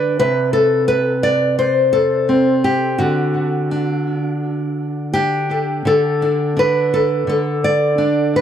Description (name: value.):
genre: folk, solo fingerstyle acoustic guitar.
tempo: 85 BPM.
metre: 4/4.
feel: rubato.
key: unclear.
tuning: A4 = 441 Hz.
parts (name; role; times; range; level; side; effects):
nylon-string guitar; solo; 0.0-8.4 s; C3 to D5; -15 LUFS; equal; analog delay.
room: moderate spring reverb, RT60 1.1 s, studio ambience.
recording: echo-heavy mix, cassette tape.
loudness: -15 LUFS.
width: side -9 dB against mid.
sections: 0.0-5.9 A section; 5.9-8.4 B section.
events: none.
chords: 0.2 N.C.; 3.0 D; 5.9 N.C..